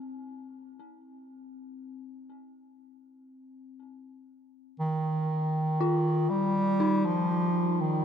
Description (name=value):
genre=dark ambient drone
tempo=60 BPM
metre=4/4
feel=straight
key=unclear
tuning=A4 = 440 Hz
part: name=dark detuned synth bell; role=arpeggios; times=0.0-8.0 s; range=C4 to F4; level=-35 LUFS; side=left 2 dB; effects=chorus, tape echo
part: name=warm bass clarinet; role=melody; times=4.8-8.0 s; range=Eb3 to G3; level=-26 LUFS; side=right 1 dB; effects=none
room=wet huge ambient reverb, RT60 7.7 s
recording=dark, warm production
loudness=-25 LUFS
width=side -8 dB against mid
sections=0.0-8.0 A section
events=fade-in on synth bell 0.0-8.0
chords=0.0 F5/C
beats=| 0.30 1.30 2.31 3.31 | 4.30 5.30 6.30 7.30